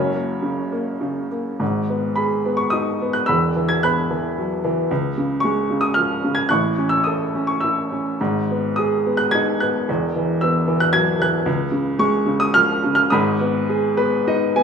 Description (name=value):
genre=classical, lyrical solo piano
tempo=99-116 BPM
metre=3/4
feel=rubato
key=G# minor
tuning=A4 = 441 Hz
part: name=warm upright piano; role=solo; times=0.0-14.6 s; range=E1 to G#6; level=-17 LUFS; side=equal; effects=none
room=moderate scoring stage reverb, RT60 1.6 s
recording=small room ambience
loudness=-18 LUFS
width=side -6 dB against mid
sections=0.0-1.6 A section; 1.6-14.6 B section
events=upright piano fill 13.7-14.6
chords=0.0 F#; 1.6 G#m; 3.3 Esus2; 4.9 C#; 6.5 A; 8.2 G#m; 9.9 Esus2; 11.5 C#; 13.1 G#m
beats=0.43 1.02 | 1.61 2.18 2.73 | 3.29 3.84 4.37 | 4.90 5.43 5.96 | 6.50 7.05 7.62 | 8.20 8.77 9.34 | 9.89 10.42 10.95 | 11.47 12.00 12.55 | 13.12 13.69 14.26